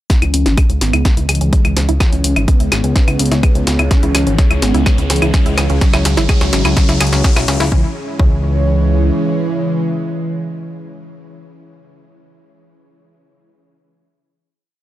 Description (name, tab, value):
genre	melodic techno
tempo	126 BPM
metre	4/4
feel	straight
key	C# minor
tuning	A4 = 443 Hz
part	mellow synth brass	melody	0.1-11.4 s	C#3 to C#4	-20 LUFS	equal	chorus, sidechain pumping, analog delay
part	dark analog pad	sustained chords	1.9-11.0 s	G#3 to C#5	-27 LUFS	left 1 dB	chorus, sidechain pumping
part	wide unison pluck	arpeggios	0.1-8.3 s	C#4 to G#4	-24 LUFS	moving between left 4 dB and right 6 dB	auto-pan, sidechain pumping, tape echo
part	bowed-like drone	drone	1.4-11.0 s	C#3 to G#3	-33 LUFS	right 1 dB	none
part	electronic kick drum	drums	0.1-8.3 s	none	-13 LUFS	equal	none
part	punchy analog drum machine	drums	0.1-7.7 s	claves, congas, hi-hat, snare drum	-19 LUFS	left 1 dB	overdrive, high-pass filter on snare, high-pass filter on hats, high-pass filter on perc
part	riser	sound effects	2.2-7.7 s	none	-28 LUFS	left 1 dB	none
part	warbly tape-like pad	texture	2.5-11.1 s	C#4 to C#5	-28 LUFS	equal	chorus, built-in reverb, sidechain pumping
part	fat analog bass	bass	0.2-9.1 s	G#1 to C#2	-16 LUFS	equal	sidechain pumping
room	little or no reverb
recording	dry, gritty hardware recording, transformer saturation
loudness	-12 LUFS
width	side -14 dB against mid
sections	0.1-7.7 build; 7.7-11.5 final chord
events	build-up 0.1-7.7; drum fill 0.1-7.7; filter sweep on synth arpeggio sound 0.1-7.7; filter sweep on analog polysynth 0.1-7.7; riser 2.2-7.7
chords	0.1 C#m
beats	| 0.10 0.58 1.05 1.53 | 2.00 2.48 2.96 3.43 | 3.91 4.38 4.86 5.34 | 5.81 6.29 6.77 7.24 | 7.72 8.20 8.67 9.15 | 9.62 10.10 10.58 11.05